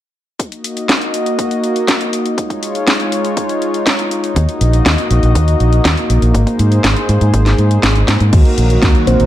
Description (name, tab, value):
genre	italo disco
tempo	121 BPM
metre	4/4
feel	straight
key	Eb dorian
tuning	A4 = 439 Hz
part	warm analog pad	sustained chords	0.4-9.3 s	Eb3 to Eb5	-17 LUFS	left 1 dB	chorus
part	electronic kick drum	drums	0.4-8.9 s	none	-15 LUFS	equal	overdrive, high-pass filter on kick, small room ambience
part	house drum kit	drums	0.4-9.3 s	crash cymbal, hi-hat, snare drum	-17 LUFS	equal	overdrive, small room ambience
part	fingered electric bass with an envelope filter	bass	4.4-9.3 s	Ab1 to Ab2	-12 LUFS	equal	tube saturation
part	mellow synth brass	stabs	8.3-9.3 s	Bb3 to Bb4	-18 LUFS	equal	chorus
part	soft octave-layered synth lead	melody	9.1-9.3 s	C5	-13 LUFS	right 2 dB	chorus, phaser, cassette tape
room	light reverb, digital ambience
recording	dark, warm production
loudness	-11 LUFS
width	side -13 dB against mid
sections	0.4-8.3 A section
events	drum fill 8.1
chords	0.4 Ebm; 2.4 Dbadd9; 4.4 Ebm; 6.3 Abadd9; 8.3 Ebm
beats	| 0.40 0.89 1.39 1.88 | 2.38 2.87 3.37 3.87 | 4.36 4.86 5.35 5.85 | 6.34 6.84 7.34 7.83 | 8.33 8.82